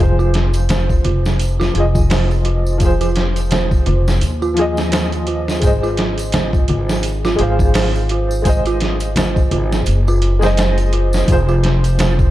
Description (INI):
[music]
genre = trip hop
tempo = 85 BPM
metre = 4/4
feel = swing 57% on 16ths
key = F phrygian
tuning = A4 = 440 Hz
[part]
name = felt-muted upright piano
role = accompaniment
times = 0.0-12.3 s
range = F3 to F5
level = -22 LUFS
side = equal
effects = tremolo, low-pass filter, tape echo
[part]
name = upright bass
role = bass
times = 0.0-12.3 s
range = F1 to Eb2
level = -17 LUFS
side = equal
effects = none
[part]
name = tambourine and congas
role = percussion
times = 0.0-12.3 s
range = none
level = -26 LUFS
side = left 1 dB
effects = none
[part]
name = dark detuned synth bell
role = arpeggios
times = 0.2-12.3 s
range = F4 to C5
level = -23 LUFS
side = right 3 dB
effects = chorus, tape echo
[part]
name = trip hop sampler-style drum kit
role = drums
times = 0.3-12.3 s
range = hi-hat, kick drum, snare drum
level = -18 LUFS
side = equal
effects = overdrive
[sound]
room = studio reverb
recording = dark, warm production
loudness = -13 LUFS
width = side -14 dB against mid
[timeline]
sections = 0.0-12.3 A section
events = filter sweep on felt piano 0.0-12.3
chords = 0.0 Fm; 5.6 Ab; 11.3 Fm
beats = 0.69 1.40 2.10 | 2.81 3.52 4.22 4.93 | 5.63 6.34 7.04 7.75 | 8.46 9.16 9.87 10.57 | 11.28 11.99